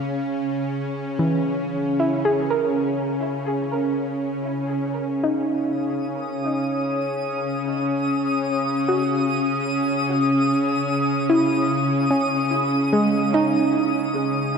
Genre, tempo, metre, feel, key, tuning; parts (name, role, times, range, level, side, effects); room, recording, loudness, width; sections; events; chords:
ambient; 74 BPM; 3/4; straight; C# dorian; A4 = 439 Hz
bowed-like drone; drone; 0.0-14.6 s; C#3 to C#4; -22 LUFS; equal; built-in reverb
soft round pluck; arpeggios; 1.2-14.6 s; E3 to A#4; -24 LUFS; right 1 dB; chorus, diffuse ambient delay
twinkling granular texture; texture; 6.1-14.6 s; D#6; -26 LUFS; equal; built-in reverb
wet lush hall reverb, RT60 2.6 s; worn, warbling old tape, cassette tape, warbly pitch drift; -20 LUFS; side -6 dB against mid
0.0-5.2 A section; 5.2-14.6 B section
0.4 C#m; 5.2 F#5; 10.1 C#m